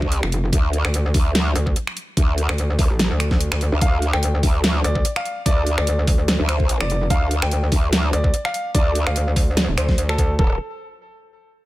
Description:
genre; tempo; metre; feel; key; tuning
heavy wobble dubstep; 146 BPM; 4/4; swing 55% on 16ths, half-time; D minor; A4 = 442 Hz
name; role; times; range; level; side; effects
growl bass; bass; 0.0-10.6 s; D1 to D2; -20 LUFS; equal; chorus, overdrive
electronic kick drum; drums; 0.0-10.5 s; none; -19 LUFS; equal; overdrive
dubstep drum kit; drums; 0.1-10.3 s; finger snaps, hi-hat, snare drum; -23 LUFS; equal; none
metallic wobble bass; bass; 0.2-10.4 s; Eb1 to D2; -20 LUFS; equal; chorus, overdrive
clear grand piano; melody; 3.8-10.5 s; A4 to G5; -26 LUFS; equal; ping-pong delay
room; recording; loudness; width
digital ambience; none; -17 LUFS; side -17 dB against mid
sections
0.0-10.4 A section; 10.4-11.7 B section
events
drop 0.0-10.4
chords
0.0 N.C.; 10.4 D5

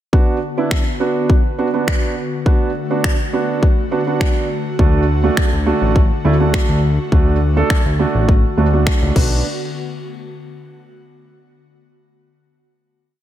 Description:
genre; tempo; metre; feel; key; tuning
dance-pop; 103 BPM; 4/4; straight; B minor; A4 = 440 Hz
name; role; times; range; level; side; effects
dark baby grand piano; accompaniment; 0.1-9.4 s; A3 to A4; -19 LUFS; right 4 dB; sidechain pumping, slapback echo
airy breathy pad; sustained chords; 0.1-9.4 s; D3 to F#4; -25 LUFS; left 3 dB; chorus, sidechain pumping
house drum kit; drums; 0.1-9.3 s; crash cymbal, finger snaps, kick drum; -16 LUFS; equal; none
fat analog bass; bass; 4.8-9.4 s; A1 to D2; -16 LUFS; equal; sidechain pumping
room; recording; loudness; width
light reverb, digital ambience; none; -14 LUFS; side -12 dB against mid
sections
0.1-9.5 verse; 9.5-11.8 final hit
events
none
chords
0.1 Bm; 4.8 D; 9.2 Bm; 9.5 N.C.

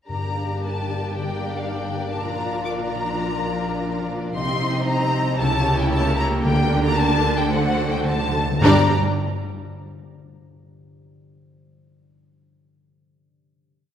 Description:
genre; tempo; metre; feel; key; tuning
classical, dramatic, fast romantic movement for symphony orchestra; 112 BPM; 4/4; rubato; G minor; A4 = 440 Hz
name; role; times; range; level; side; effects
warm symphonic violin section; melody; 0.1-8.9 s; F5 to D6; -26 LUFS; left 2 dB; none
warm symphonic violin section; second line; 0.1-8.9 s; F#4 to Eb5; -29 LUFS; left 2 dB; none
warm symphonic viola section; accompaniment; 0.1-8.9 s; G3 to G4; -26 LUFS; right 1 dB; none
concert harp; arpeggios; 0.1-8.9 s; G2 to D5; -28 LUFS; left 3 dB; none
clear symphonic double bass section; bass; 0.1-8.9 s; G1 to D2; -28 LUFS; right 3 dB; none
rich symphonic cello section; bass; 0.1-8.9 s; G2 to D3; -29 LUFS; right 2 dB; none
timpani; percussion; 0.1-0.9, 6.4-8.9 s; G2 to D3; -27 LUFS; right 1 dB; none
room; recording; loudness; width
wet concert hall reverb, RT60 2.1 s; heard from further back in the room; -19 LUFS; side -9 dB against mid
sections
0.1-8.6 A section; 8.6-10.8 final chord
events
timpani fill 7.5-8.6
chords
0.1 Gm; 2.2 Bb; 4.4 Cm; 5.4 C#dim7; 6.4 Gm/D; 7.5 D7; 8.6 G5

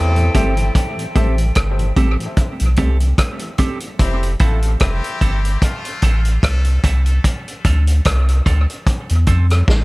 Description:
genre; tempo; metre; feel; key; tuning
dub reggae; 74 BPM; 4/4; swing 56% on 16ths; A minor; A4 = 441 Hz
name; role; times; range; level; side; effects
silver concert flute; melody; 0.0-0.8 s; G5; -28 LUFS; equal; dub echo
mellow horn section; second line; 0.0-7.0 s; A3 to A4; -29 LUFS; left 2 dB; high-pass filter, dub echo
warm sub bass; bass; 0.0-9.8 s; F1 to F2; -15 LUFS; equal; none
mellow tonewheel organ; accompaniment; 0.2-9.6 s; F2 to E4; -28 LUFS; equal; chorus vibrato, stopped rotary speaker, high-pass filter, dub echo
warm upright piano; stabs; 0.2-1.3 s; G4 to E5; -30 LUFS; left 5 dB; high-pass filter, dub echo
vintage drum kit; drums; 0.2-9.8 s; hi-hat, kick drum, rim click, snare drum; -18 LUFS; equal; none
clean electric guitar; accompaniment; 0.3-9.5 s; C4 to A4; -27 LUFS; right 5 dB; high-pass filter, dub echo
room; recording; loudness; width
studio reverb; none; -14 LUFS; side -22 dB against mid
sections
0.0-9.8 A section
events
filter sweep 0.8-9.8; drum fill 9.7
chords
0.0 Am7; 4.0 Fmaj7; 7.2 Dm7

